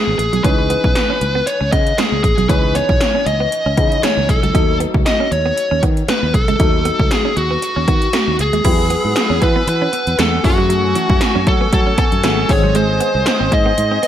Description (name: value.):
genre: 1980s-style pop.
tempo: 117 BPM.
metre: 4/4.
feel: swing 55% on 16ths.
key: C# minor.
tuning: A4 = 444 Hz.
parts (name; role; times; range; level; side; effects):
fuzz lead guitar; melody; 0.0-14.1 s; F#4 to D#5; -18 LUFS; left 1 dB; distortion, ping-pong delay.
warm grand piano; accompaniment; 0.0-14.1 s; D#3 to A4; -24 LUFS; left 3 dB; lush chorus.
direct-recorded clean electric guitar; riff; 0.0-14.1 s; E3 to E4; -24 LUFS; right 5 dB; wide subtle chorus.
fretless electric bass; bass; 0.1-14.0 s; G#1 to F#3; -20 LUFS; equal; none.
80s electronic pad drums; drums; 0.2-14.1 s; crash cymbal, hi-hat, kick drum, snare drum; -17 LUFS; equal; overdrive, gated reverb.
brassy analog pad; sustained chords; 8.6-14.1 s; A3 to E6; -24 LUFS; right 1 dB; chorus.
room: moderate plate reverb, RT60 1.5 s.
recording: bright 1980s-style digital production.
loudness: -13 LUFS.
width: side -10 dB against mid.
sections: 0.0-8.6 A section; 8.6-14.1 B section.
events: none.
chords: 0.4 C#madd9; 4.5 D#dim; 8.6 Eadd9; 10.4 F#madd9; 12.5 G#.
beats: | 0.44 0.96 1.47 1.98 | 2.50 3.01 3.52 4.03 | 4.55 5.06 5.57 6.08 | 6.60 7.11 7.62 8.14 | 8.65 9.16 9.68 10.19 | 10.70 11.21 11.73 12.24 | 12.75 13.26 13.78.